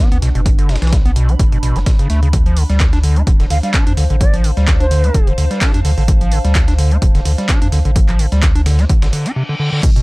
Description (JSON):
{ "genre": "acid house", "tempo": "128 BPM", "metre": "4/4", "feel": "swing 55% on 16ths", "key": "unclear", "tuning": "A4 = 440 Hz", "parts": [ { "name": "overdriven acid bass", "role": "riff", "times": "0.0-10.0 s", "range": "B2 to D4", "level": "-20 LUFS", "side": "equal", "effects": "none" }, { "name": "warbly tape-like pad", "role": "texture", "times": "0.1-9.4 s", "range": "D4 to B5", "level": "-29 LUFS", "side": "right 1 dB", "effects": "chorus, built-in reverb, phaser, sidechain pumping" }, { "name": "warm sub bass", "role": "bass", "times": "0.1-9.1 s", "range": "D1 to F2", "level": "-14 LUFS", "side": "equal", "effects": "sidechain pumping" }, { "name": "dusty soul sampler-style drum kit", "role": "drums", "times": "0.1-10.0 s", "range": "hi-hat, snare drum", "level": "-32 LUFS", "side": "equal", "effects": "sidechain pumping on hats, high-pass filter on hats, high-pass filter on snare" }, { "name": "punchy analog drum machine", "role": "drums", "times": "0.1-10.0 s", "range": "crash cymbal, handclaps, hi-hat, shaker", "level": "-24 LUFS", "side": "right 1 dB", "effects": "none" }, { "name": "electronic kick drum", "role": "drums", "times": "0.5-9.9 s", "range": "none", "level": "-13 LUFS", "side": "equal", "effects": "none" }, { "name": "mellow concert flute", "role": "melody", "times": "3.5-5.3 s", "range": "C5 to F5", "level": "-23 LUFS", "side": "right 1 dB", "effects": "analog delay" }, { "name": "reverse cymbal", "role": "sound effects", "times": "9.1-9.8 s", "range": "none", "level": "-24 LUFS", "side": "left 1 dB", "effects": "none" } ], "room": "little or no reverb", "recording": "dry, gritty hardware recording", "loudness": "-11 LUFS", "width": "side -23 dB against mid", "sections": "0.0-9.8 A section", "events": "reverse cymbal 9.1-9.8; break 9.4-9.8", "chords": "0.0 Bm7; 2.3 Dm7" }